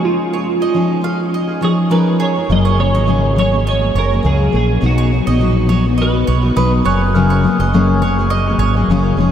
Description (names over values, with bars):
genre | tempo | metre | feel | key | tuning
acoustic pop | 103 BPM | 4/4 | swing 55% on 16ths | F# major | A4 = 440 Hz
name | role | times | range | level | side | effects
twelve-string electric guitar | melody | 0.0-6.8 s | E#4 to D#5 | -21 LUFS | right 3 dB | analog chorus, analog delay
picked steel-string acoustic guitar | accompaniment | 0.0-9.3 s | F#2 to G#4 | -16 LUFS | left 2 dB | lush chorus
mandolin | arpeggios | 0.3-8.7 s | G#4 to E#5 | -23 LUFS | right 5 dB | analog delay
mellow fretless electric bass | bass | 2.5-9.3 s | E#1 to C#2 | -16 LUFS | right 1 dB | none
glockenspiel with rubber mallets | second line | 6.6-9.1 s | C#6 to F#6 | -22 LUFS | equal | analog delay
room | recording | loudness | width
wet huge ambient reverb, RT60 7.8 s | dreamy mix soaked in reverb | -12 LUFS | side -9 dB against mid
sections
0.0-2.5 A section; 2.5-9.3 B section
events
none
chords
0.0 C#add9/E#; 2.5 F#add9; 4.8 B; 6.9 F#add9